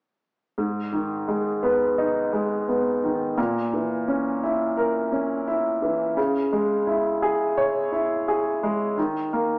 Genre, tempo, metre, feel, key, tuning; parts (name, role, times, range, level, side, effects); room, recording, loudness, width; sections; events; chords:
folk; 86 BPM; 4/4; straight; G# minor; A4 = 440 Hz
clear upright piano; melody; 0.6-9.6 s; G#2 to C#5; -24 LUFS; equal
wet stone room reverb, RT60 1.4 s; band playing live in one room, small speaker sound; -24 LUFS; mono
0.6-9.6 A section
0.6 G#m; 3.4 A#dim; 6.2 C#m; 9.0 D#5